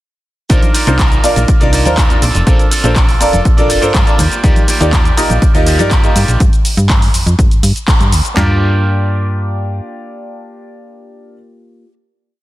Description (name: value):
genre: filtered disco house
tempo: 122 BPM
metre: 4/4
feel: straight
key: G minor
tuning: A4 = 440 Hz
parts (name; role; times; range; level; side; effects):
- bright grand piano; accompaniment; 0.5-11.3 s; D4 to Eb5; -17 LUFS; equal; phaser, sidechain pumping
- electric guitar with an envelope filter; riff; 0.5-11.9 s; Bb3 to D5; -21 LUFS; right 1 dB; vintage 12-bit sampler grit, sidechain pumping
- slap-like FM bass; bass; 0.5-9.8 s; F1 to G2; -15 LUFS; equal; sidechain pumping
- house drum kit; drums; 0.5-8.5 s; handclaps, kick drum, snare drum, toms; -12 LUFS; equal; none
- punchy analog drum machine; drums; 0.5-8.3 s; cabasa, handclaps, hi-hat; -19 LUFS; equal; sidechain pumping on hats, sidechain pumping on perc
- maracas and congas; percussion; 0.5-6.4 s; none; -24 LUFS; right 1 dB; none
room: digital ambience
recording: dense, heavily limited modern master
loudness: -9 LUFS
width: side -16 dB against mid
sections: 0.5-8.4 drop; 8.4-12.3 final chord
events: drop 0.5-8.4; band accent 7.9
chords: 0.5 Cm11; 2.2 Bbmaj9; 4.2 Ebmaj9; 6.4 G5; 8.4 Gm7